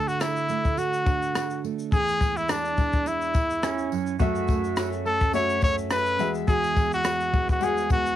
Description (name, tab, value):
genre	acoustic pop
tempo	105 BPM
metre	4/4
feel	swing 55% on 16ths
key	unclear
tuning	A4 = 437 Hz
part	bright trumpet	melody	0.0-8.2 s	D4 to C#5	-24 LUFS	left 1 dB	cassette tape
part	fingerpicked steel-string acoustic guitar	accompaniment	0.0-8.2 s	E2 to F#4	-30 LUFS	right 8 dB	cassette tape
part	compact cocktail drum kit	drums	0.1-8.2 s	kick drum, rim click, shaker	-26 LUFS	left 1 dB	none
part	tambourine	percussion	0.2-8.0 s	none	-46 LUFS	left 16 dB	none
part	pedal steel guitar	second line	3.6-4.9 s	C#4 to F#4	-31 LUFS	right 8 dB	cassette tape, tape echo
part	bright upright piano	accompaniment	4.2-8.2 s	G#3 to F#5	-31 LUFS	left 11 dB	cassette tape
room	light reverb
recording	home recording on cassette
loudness	-22 LUFS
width	side -12 dB against mid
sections	0.0-8.2 A section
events	none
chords	0.0 D; 1.9 E7; 3.9 F#m7; 6.2 Eadd9